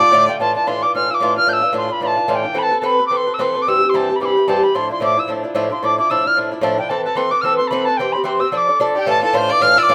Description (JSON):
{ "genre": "celtic folk, Celtic reel", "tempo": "221 BPM", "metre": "4/4", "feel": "swing 56% on 8ths", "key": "D dorian", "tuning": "A4 = 439 Hz", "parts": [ { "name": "reedy wooden whistle", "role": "melody", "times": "0.0-9.9 s", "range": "G5 to G6", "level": "-19 LUFS", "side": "equal", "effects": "plate reverb" }, { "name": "rich fiddle", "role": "second line", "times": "0.0-0.3, 9.0-9.9 s", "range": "G4 to F5", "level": "-24 LUFS", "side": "equal", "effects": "none" }, { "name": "Irish bouzouki", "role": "accompaniment", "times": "0.0-9.9 s", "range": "G2 to D5", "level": "-21 LUFS", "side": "equal", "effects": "none" } ], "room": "moderate small room reverb, RT60 0.5 s", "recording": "none", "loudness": "-17 LUFS", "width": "mono", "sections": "0.4-9.1 A section", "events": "none", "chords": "0.4 Dmadd9; 2.6 Amadd9; 3.7 C; 4.7 Dmadd9; 6.9 Amadd9; 8.0 C; 8.5 Dm; 9.1 Dmadd9", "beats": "0.12 | 0.40 0.67 0.94 1.21 | 1.48 1.75 2.03 2.30 | 2.57 2.84 3.12 3.39 | 3.66 3.93 4.20 4.47 | 4.74 5.02 5.29 5.56 | 5.83 6.10 6.37 6.64 | 6.91 7.18 7.46 7.73 | 8.00 8.27 8.54 8.81 | 9.08 9.35 9.62 9.88" }